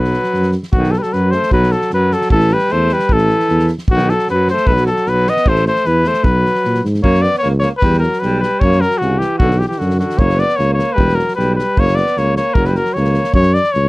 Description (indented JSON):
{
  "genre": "balkan folk, Balkan brass band",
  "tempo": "152 BPM",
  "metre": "2/4",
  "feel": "straight",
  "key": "B phrygian dominant, F# phrygian dominant from 7.0 s",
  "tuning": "A4 = 440 Hz",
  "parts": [
    { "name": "warm cornet", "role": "melody", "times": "0.0-13.9 s", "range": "F#4 to D#5", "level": "-16 LUFS", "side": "left 2 dB", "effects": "none" },
    { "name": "warm alto saxophone", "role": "second line", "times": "0.0-13.4 s", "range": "C#3 to B3", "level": "-21 LUFS", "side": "right 2 dB", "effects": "none" },
    { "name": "mellow tuba", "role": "bass", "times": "0.0-13.9 s", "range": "E1 to A#2", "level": "-16 LUFS", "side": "equal", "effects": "none" },
    { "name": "loose indie drum kit", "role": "percussion", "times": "0.0-13.8 s", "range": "kick drum, snare drum", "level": "-19 LUFS", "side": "equal", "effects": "none" }
  ],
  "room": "little or no reverb",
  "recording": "dry, close 1970s-style studio recording",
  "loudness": "-12 LUFS",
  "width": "side -21 dB against mid",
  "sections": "0.7-7.0 A section; 7.0-13.3 B section",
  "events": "none",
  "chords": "0.0 B5; 2.3 A5; 3.9 B5; 5.5 A5; 6.2 B5; 6.6 G#m9; 7.0 F#5; 7.8 E5; 8.6 C7#11; 9.4 B5; 10.2 F#5; 11.0 E5; 11.8 F#5",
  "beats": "0.34 | 0.73 1.13 | 1.52 1.92 | 2.31 2.70 | 3.10 3.49 | 3.88 4.28 | 4.67 5.06 | 5.46 5.85 | 6.25 6.64 | 7.03 7.43 | 7.82 8.22 | 8.61 9.01 | 9.40 9.79 | 10.19 10.58 | 10.98 11.38 | 11.77 12.16 | 12.56 12.95 | 13.35 13.74"
}